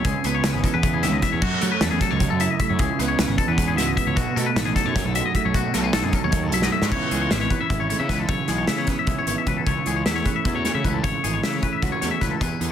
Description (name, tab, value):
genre	math rock and midwest emo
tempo	306 BPM (eighths)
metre	7/8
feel	straight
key	unclear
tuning	A4 = 440 Hz
part	mellow electric guitar	accompaniment	0.0-12.7 s	E2 to F#4	-26 LUFS	right 8 dB	none
part	twangy electric guitar	arpeggios	0.0-12.7 s	F#4 to E5	-25 LUFS	left 9 dB	spring reverb
part	fuzz picked electric bass	bass	0.0-12.7 s	G#1 to F#3	-26 LUFS	equal	overdrive
part	loose indie drum kit	drums	0.0-12.7 s	crash cymbal, hi-hat, kick drum, snare drum	-24 LUFS	equal	soft clipping on kick
room	light reverb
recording	dense, heavily limited modern master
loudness	-20 LUFS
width	side -9 dB against mid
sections	0.0-6.9 A section; 6.9-12.7 B section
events	drum fill 6.6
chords	0.1 C#m7; 1.4 F#m7; 2.8 C#m7; 4.2 B7; 6.9 C#m7; 9.7 Amaj7/C#